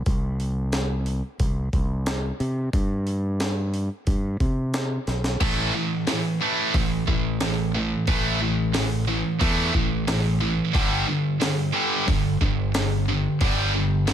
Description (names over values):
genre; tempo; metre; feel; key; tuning
quiet-loud alternative rock; 90 BPM; 4/4; straight; A minor; A4 = 440 Hz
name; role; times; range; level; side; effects
growling fingered electric bass; bass; 0.1-14.1 s; G1 to C3; -25 LUFS; equal; overdrive
jungle sampler-style drum kit; drums; 0.1-14.1 s; crash cymbal, hi-hat, kick drum, snare drum; -26 LUFS; equal; none
high-gain distorted guitar; riff; 5.4-14.1 s; G2 to A3; -23 LUFS; right 1 dB; distortion
room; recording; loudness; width
digital ambience; none; -21 LUFS; side -9 dB against mid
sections
0.0-5.4 A section; 5.4-14.1 B section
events
drum fill 5.1-5.4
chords
0.0 C5; 5.4 A5; 10.7 G5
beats
| 0.06 0.73 1.40 2.06 | 2.73 3.40 4.07 4.74 | 5.41 6.07 6.74 7.41 | 8.08 8.74 9.41 10.08 | 10.74 11.41 12.08 12.74 | 13.41 14.07